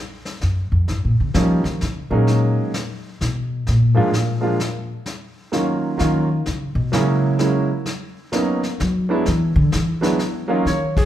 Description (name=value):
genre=jazz piano trio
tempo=129 BPM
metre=3/4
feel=swing 66% on 8ths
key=Eb minor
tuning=A4 = 440 Hz
part: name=vintage brush drum kit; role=drums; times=0.3-11.1 s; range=brushed snare drum, crash cymbal, kick drum, snare drum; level=-27 LUFS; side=left 2 dB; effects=none
part: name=upright bass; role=bass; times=0.4-11.1 s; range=F2 to F#3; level=-19 LUFS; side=equal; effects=none
part: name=clear concert grand piano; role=melody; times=1.3-11.1 s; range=Eb3 to Db5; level=-21 LUFS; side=right 2 dB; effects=none
room=moderate recital hall reverb, RT60 1.2 s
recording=recorded in a church or concert hall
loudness=-17 LUFS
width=side -12 dB against mid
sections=0.0-10.7 A section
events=upright bass solo 0.0-10.7; band accent 10.9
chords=0.0 N.C.; 0.9 Eb7; 2.3 Abm7; 3.7 Bb7; 5.1 Ebm7; 6.5 Gb7; 7.9 B5; 9.3 Esus2